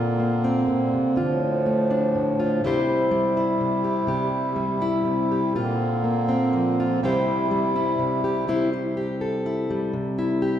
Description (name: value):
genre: acoustic folk duo or small band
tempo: 123 BPM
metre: 3/4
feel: straight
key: C mixolydian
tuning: A4 = 440 Hz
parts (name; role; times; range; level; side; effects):
- fingerpicked plugged-in steel-string acoustic guitar; accompaniment; 0.0-10.6 s; A2 to C5; -22 LUFS; left 1 dB; none
- pedal harmonium; sustained chords; 0.0-8.5 s; D2 to E4; -25 LUFS; right 2 dB; none
room: wet recital hall reverb, RT60 1.5 s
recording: recorded in a church or concert hall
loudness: -21 LUFS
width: side -10 dB against mid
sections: 0.0-8.5 A section; 8.5-10.6 B section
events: none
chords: 0.0 Bbadd9; 1.2 Dm; 2.6 C; 5.6 Bbadd9; 7.0 C